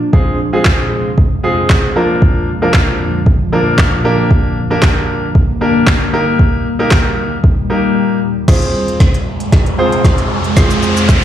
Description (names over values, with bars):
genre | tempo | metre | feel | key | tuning
dance-pop | 115 BPM | 4/4 | straight | F dorian | A4 = 441 Hz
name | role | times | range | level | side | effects
ethereal airy pad | sustained chords | 0.0-11.2 s | Eb2 to D4 | -18 LUFS | left 1 dB | ensemble chorus, built-in reverb, sidechain pumping
clear concert grand piano | accompaniment | 0.1-11.2 s | F3 to C5 | -16 LUFS | equal | sidechain pumping
smooth R&B drum kit | drums | 0.1-11.2 s | crash cymbal, handclaps, hi-hat, kick drum, shaker, snare drum | -11 LUFS | equal | none
riser | sound effects | 9.1-11.2 s | none | -19 LUFS | left 1 dB | none
room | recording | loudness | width
light reverb, digital ambience | played on a big sound system in a bare room, stone room reverb | -10 LUFS | side -11 dB against mid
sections
0.0-8.5 A section; 8.5-11.2 B section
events
break 8.0-8.5; build-up 8.5-11.2; drum fill 8.5-11.2; riser 9.1-11.2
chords
0.1 Fm; 2.0 Bb/F; 4.0 Gm; 6.1 Eb; 8.5 Fm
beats
| 0.13 0.66 1.18 1.70 | 2.22 2.74 3.26 3.79 | 4.31 4.83 5.35 5.87 | 6.39 6.92 7.44 7.96 | 8.48 9.00 9.53 10.05 | 10.57 11.09